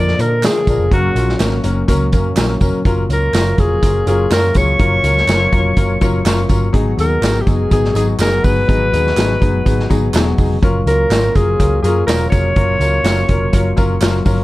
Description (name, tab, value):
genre	uptempo 1960s-style soul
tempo	124 BPM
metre	4/4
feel	straight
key	F# major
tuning	A4 = 441 Hz
part	bright alto saxophone	melody	0.0-13.7 s	F#4 to D5	-18 LUFS	left 1 dB	tape echo
part	clear concert grand piano	accompaniment	0.0-14.4 s	E#3 to A#4	-20 LUFS	left 3 dB	none
part	tonewheel organ	sustained chords	0.0-14.4 s	D3 to F#4	-27 LUFS	right 2 dB	slow rotary speaker
part	vintage muted picked electric bass	bass	0.0-14.4 s	E1 to A#2	-17 LUFS	equal	none
part	vintage drum kit	drums	0.1-14.4 s	hi-hat, kick drum, snare drum	-17 LUFS	equal	none
part	tambourine and handclaps	percussion	0.2-14.4 s	none	-31 LUFS	right 6 dB	none
room	light reverb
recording	dark, warm production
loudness	-12 LUFS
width	side -18 dB against mid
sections	0.0-2.9 A section; 2.9-14.4 B section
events	none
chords	0.0 A#; 0.9 F#; 2.9 F#maj7; 6.7 G#m7; 10.6 F#maj7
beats	0.43 | 0.92 1.40 1.89 2.37 | 2.86 3.34 3.83 4.31 | 4.80 5.29 5.77 6.26 | 6.74 7.23 7.71 8.20 | 8.69 9.17 9.66 10.14 | 10.63 11.11 11.60 12.08 | 12.56 13.05 13.53 14.02